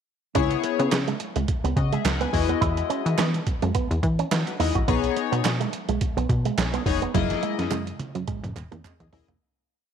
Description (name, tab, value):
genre	early-eighties boogie funk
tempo	106 BPM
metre	4/4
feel	swing 56% on 16ths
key	C# dorian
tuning	A4 = 439 Hz
part	chorused polysynth	accompaniment	0.3-9.3 s	G#3 to G#5	-27 LUFS	left 12 dB	none
part	electric guitar with an envelope filter	riff	0.4-9.4 s	F#3 to F#4	-30 LUFS	right 11 dB	analog chorus
part	plucky analog bass	bass	0.4-9.4 s	E1 to E3	-26 LUFS	left 1 dB	none
part	trip hop sampler-style drum kit	drums	0.4-9.4 s	handclaps, hi-hat, kick drum, snare drum, toms	-27 LUFS	right 2 dB	none
part	group handclap	percussion	0.9-9.0 s	none	-37 LUFS	right 10 dB	none
room	moderate echo chamber reverb, RT60 2.2 s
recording	1960s-style stereo with parts hard left and right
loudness	-22 LUFS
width	side -8 dB against mid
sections	0.4-9.4 verse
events	fade-out 7.1-9.4; drum fill 7.1-9.4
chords	0.4 C#m7; 2.3 Emaj9; 4.9 B69; 7.1 F#13